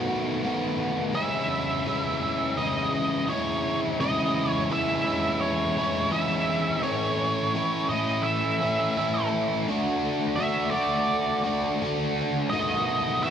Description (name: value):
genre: rock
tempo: 84 BPM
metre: 4/4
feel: straight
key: C# minor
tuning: A4 = 440 Hz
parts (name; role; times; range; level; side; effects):
- biting overdriven guitar; riff; 0.0-13.3 s; A2 to F#4; -25 LUFS; equal; lush chorus
- octave-fuzz lead guitar; melody; 1.1-13.3 s; C#5 to E5; -28 LUFS; right 2 dB; distortion, digital delay
room: moderate recital hall reverb, RT60 1.6 s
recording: dark, warm production, faint mains hum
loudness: -23 LUFS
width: side -8 dB against mid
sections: 0.0-4.0 A section; 4.0-13.3 B section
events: none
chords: 0.0 B7; 1.2 C#madd9; 6.8 A; 9.7 D; 12.5 B7